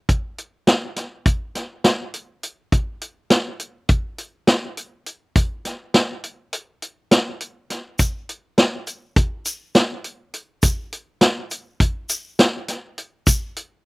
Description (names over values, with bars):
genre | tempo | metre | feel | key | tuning
progressive instrumental, progressive | 205 BPM (eighths) | 9/8 | straight | none | none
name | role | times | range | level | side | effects
vintage drum kit | drums | 0.1-13.7 s | hi-hat, kick drum, snare drum | -17 LUFS | equal | none
egg shaker | percussion | 8.0-13.5 s | none | -25 LUFS | left 1 dB | none
room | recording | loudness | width
little or no reverb | recorded outdoors, with no room sound | -19 LUFS | side -30 dB against mid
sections
0.0-13.8 A section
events
none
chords
none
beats
| 0.09 0.38 0.67 0.97 1.26 1.55 1.84 2.14 2.43 | 2.72 3.02 3.31 3.60 3.89 4.19 4.48 4.77 5.06 | 5.36 5.65 5.94 6.24 6.53 6.82 7.11 7.41 7.70 | 7.99 8.28 8.58 8.87 9.16 9.46 9.75 10.04 10.33 | 10.63 10.92 11.21 11.51 11.80 12.09 12.38 12.68 12.97 | 13.26 13.56